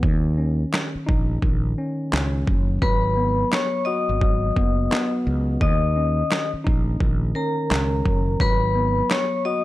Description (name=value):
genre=hip hop, boom-bap hip-hop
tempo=86 BPM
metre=4/4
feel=swing 63% on 16ths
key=Eb minor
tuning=A4 = 436 Hz
part: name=tine electric piano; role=accompaniment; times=0.0-9.6 s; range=Eb3 to Gb4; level=-26 LUFS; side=equal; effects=cassette tape, high-pass filter, low-pass filter
part: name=mellow fretless electric bass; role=bass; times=0.0-9.0 s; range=Gb1 to Eb2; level=-23 LUFS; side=equal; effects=none
part: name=boom bap sampler-style drum kit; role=drums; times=0.0-9.3 s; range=handclaps, kick drum, snare drum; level=-23 LUFS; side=equal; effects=none
part: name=vibraphone with medium hard mallets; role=melody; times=2.8-9.6 s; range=Bb4 to Eb6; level=-24 LUFS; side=left 3 dB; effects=high-pass filter, low-pass filter
room=little or no reverb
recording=dry, gritty hardware recording, transformer saturation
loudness=-19 LUFS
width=side -16 dB against mid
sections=0.0-9.6 A section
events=break 0.0-9.6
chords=0.0 Ebm7; 2.8 Abm7; 5.6 Ebm7; 8.4 Abm7